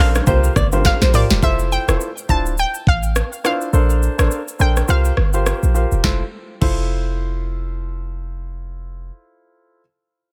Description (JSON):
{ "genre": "afrobeats", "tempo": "104 BPM", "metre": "4/4", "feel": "swing 58% on 16ths", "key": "F major", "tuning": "A4 = 439 Hz", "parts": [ { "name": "analog pluck", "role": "melody", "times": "0.0-5.4 s", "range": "D5 to A5", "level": "-26 LUFS", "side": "equal", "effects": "chorus, tape echo" }, { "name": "warm grand piano", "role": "accompaniment", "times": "0.0-9.8 s", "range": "D4 to C5", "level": "-26 LUFS", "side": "equal", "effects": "none" }, { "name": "flamenco guitar", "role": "riff", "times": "0.0-1.2 s", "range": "Bb4 to D5", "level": "-27 LUFS", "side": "equal", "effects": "none" }, { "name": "clean 808-style bass", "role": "bass", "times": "0.0-9.1 s", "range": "D1 to C2", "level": "-20 LUFS", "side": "equal", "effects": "none" }, { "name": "afro-pop drum kit", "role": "drums", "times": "0.1-6.8 s", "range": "crash cymbal, hi-hat, kick drum, rim click, shaker, snare drum, toms", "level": "-22 LUFS", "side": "equal", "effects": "none" }, { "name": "bongos and congas", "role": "percussion", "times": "0.2-1.0 s", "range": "none", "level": "-28 LUFS", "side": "equal", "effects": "none" } ], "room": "digital ambience", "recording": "none", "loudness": "-18 LUFS", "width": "mono", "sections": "0.0-1.4 A section; 1.4-6.0 B section; 6.0-8.3 C section", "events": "drum fill 0.8-1.4", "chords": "0.3 C7sus4; 1.4 Fmaj7; 2.3 Dm9; 3.7 Bbmaj9; 4.9 C7sus4; 6.0 Fmaj7", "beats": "0.27 0.85 | 1.42 2.00 2.58 3.15 | 3.73 4.31 4.89 5.46 | 6.04 6.62 7.19 7.77" }